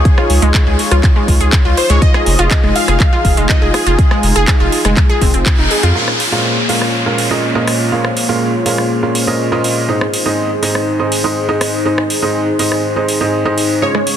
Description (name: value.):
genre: progressive house.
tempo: 122 BPM.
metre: 4/4.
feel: straight.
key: Bb minor.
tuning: A4 = 440 Hz.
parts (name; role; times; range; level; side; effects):
plucky unison lead; melody; 0.0-5.5, 13.8-14.2 s; Ab4 to F5; -20 LUFS; left 1 dB; wide subtle chorus, cassette tape, sidechain pumping, tape echo.
warm analog pad; sustained chords; 0.0-14.2 s; Db3 to F5; -20 LUFS; equal; chorus, sidechain pumping.
wide unison pluck; arpeggios; 0.0-5.9, 13.9-14.0 s; Ab3 to Ab4; -18 LUFS; equal; sidechain pumping, digital delay.
saturated sub bass; bass; 0.0-5.9 s; F1 to F2; -14 LUFS; equal; sidechain pumping.
electronic kick drum; drums; 0.1-5.6 s; none; -12 LUFS; equal; none.
house drum kit; drums; 0.1-14.2 s; handclaps, hi-hat, rim click; -19 LUFS; right 1 dB; soft clipping on snare.
bright baby grand piano; stabs; 6.0-14.0 s; Ab2 to F5; -16 LUFS; right 1 dB; sidechain pumping, digital delay.
downlifter; sound effects; 6.0-9.9 s; none; -22 LUFS; equal; none.
room: light reverb.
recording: dense, heavily limited modern master.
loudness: -11 LUFS.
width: side -10 dB against mid.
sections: 0.0-6.0 A section; 6.0-14.2 B section.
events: band accent 5.5; filter sweep on analog synth pad 6.0-14.2.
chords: 0.0 Dbadd9; 2.0 Fm7; 6.0 Bbm7; 9.9 Ab.